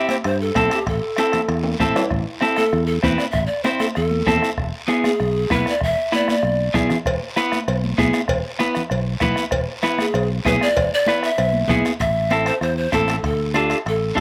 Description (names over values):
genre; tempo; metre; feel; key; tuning
latin, cumbia; 194 BPM; 4/4; straight; unclear; A4 = 440 Hz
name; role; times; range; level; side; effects
breathy mellow pan flute; melody; 0.0-6.9, 10.0-14.2 s; G4 to E5; -24 LUFS; equal; slapback echo
electric guitar at the edge of break-up; accompaniment; 0.0-14.2 s; B3 to C5; -22 LUFS; equal; none
bombo; percussion; 0.1-14.2 s; none; -30 LUFS; equal; none
congas; percussion; 0.1-14.2 s; none; -31 LUFS; equal; none
guiro; percussion; 0.1-14.2 s; none; -37 LUFS; equal; none
timbales and cowbell; percussion; 0.1-2.0, 7.1-14.2 s; none; -30 LUFS; equal; slapback echo
fingered electric bass; bass; 0.2-14.2 s; E1 to G2; -26 LUFS; equal; none
room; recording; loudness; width
little or no reverb; recorded outdoors, with no room sound; -20 LUFS; mono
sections
0.0-2.1 A section; 2.1-12.0 B section; 12.0-14.2 C section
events
drum fill 1.6-2.1, 6.1-7.1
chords
0.0 C; 0.9 Am; 4.6 E; 12.0 Am; 13.2 Dm